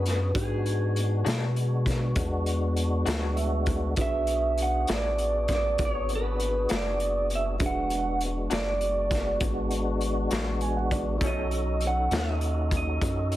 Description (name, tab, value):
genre	slow blues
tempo	66 BPM (dotted quarters)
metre	12/8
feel	straight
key	E mixolydian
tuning	A4 = 440 Hz
part	electric guitar through a small old amp	melody	0.0-13.4 s	G#4 to F#5	-29 LUFS	right 2 dB	spring reverb, plate reverb
part	dark grand piano	accompaniment	0.0-13.4 s	D4 to G#5	-37 LUFS	right 4 dB	plate reverb
part	tonewheel organ	sustained chords	0.0-13.4 s	G#3 to A4	-32 LUFS	left 1 dB	slow rotary speaker, overdrive, chorus vibrato
part	rubbery square bass	bass	0.0-13.4 s	E1 to B2	-29 LUFS	equal	none
part	raw garage drum kit	drums	0.1-13.4 s	hi-hat, kick drum, snare drum	-31 LUFS	equal	none
part	electric guitar through a small old amp	accompaniment	1.2-12.3 s	B2 to F#4	-36 LUFS	left 5 dB	tremolo, plate reverb
room	moderate studio reverb, RT60 0.8 s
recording	heavily compressed radio sound, multiband compression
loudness	-24 LUFS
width	side -14 dB against mid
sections	0.0-13.4 A section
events	grand piano fill 3.1-4.0, 10.3-11.2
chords	0.0 E9; 11.2 B9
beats	| 0.35 1.26 2.17 3.07 | 3.98 4.88 5.79 6.70 | 7.60 8.50 9.41 10.31 | 11.21 12.12 13.02